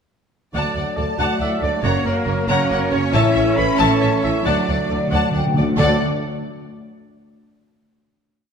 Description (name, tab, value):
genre	cinematic, heroic adventure film score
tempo	92 BPM (dotted quarters)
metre	6/8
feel	straight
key	D major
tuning	A4 = 442 Hz
part	clear oboe	second line	0.5-6.0 s	A#4 to B5	-28 LUFS	right 1 dB	none
part	warm clarinet	second line	0.5-6.0 s	A#4 to B5	-30 LUFS	left 3 dB	none
part	rich symphonic viola section	accompaniment	0.5-6.0 s	A4 to F#5	-26 LUFS	left 1 dB	none
part	mellow French horn section	sustained chords	0.5-6.0 s	A#3 to B4	-26 LUFS	left 5 dB	none
part	mellow trombone section	sustained chords	0.5-6.0 s	E3 to A#3	-28 LUFS	right 3 dB	none
part	dark trumpet section	stabs	0.5-6.0 s	C#5 to D5	-28 LUFS	right 2 dB	none
part	clear studio double bass section	bass	0.5-6.0 s	F#1 to D2	-23 LUFS	right 3 dB	none
part	rich studio violin section	melody	0.6-6.0 s	C#5 to A#5	-26 LUFS	left 5 dB	none
part	clear symphonic violin section	second line	0.6-6.0 s	A#4 to B5	-30 LUFS	left 3 dB	none
part	rich symphonic cello section	bass	1.2-6.0 s	D2 to C#4	-24 LUFS	right 3 dB	none
part	timpani	percussion	3.1-6.0 s	A2 to D3	-23 LUFS	equal	none
part	mellow flute section	second line	5.1-5.8 s	F#5 to G5	-28 LUFS	left 9 dB	none
room	wet scoring stage reverb, RT60 1.8 s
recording	none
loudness	-16 LUFS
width	side -6 dB against mid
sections	0.6-5.8 theme; 5.8-7.1 final chord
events	timpani fill 4.5-5.8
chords	0.6 D; 1.9 F#; 3.1 A; 4.5 D